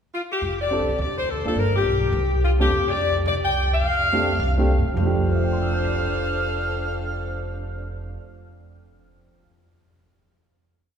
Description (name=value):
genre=jazz, big band swing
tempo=211 BPM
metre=4/4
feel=swing 60% on 8ths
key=F major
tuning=A4 = 439 Hz
part: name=clear saxophone section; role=melody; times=0.1-8.0 s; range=D4 to G5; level=-24 LUFS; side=left 2 dB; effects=none
part: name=upright bass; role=bass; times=0.4-8.2 s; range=F1 to C3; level=-24 LUFS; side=right 1 dB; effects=none
part: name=warm baby grand piano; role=accompaniment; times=0.7-9.0 s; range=F2 to C7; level=-27 LUFS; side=right 2 dB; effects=none
room=wet church reverb, RT60 3.6 s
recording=recorded in a church or concert hall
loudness=-20 LUFS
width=side -7 dB against mid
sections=0.0-0.4 pickup bar; 0.4-5.0 A section; 5.0-7.2 final chord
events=none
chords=0.4 F69; 1.0 D5; 1.6 G; 2.1 C5; 2.7 Fsus2; 5.0 F69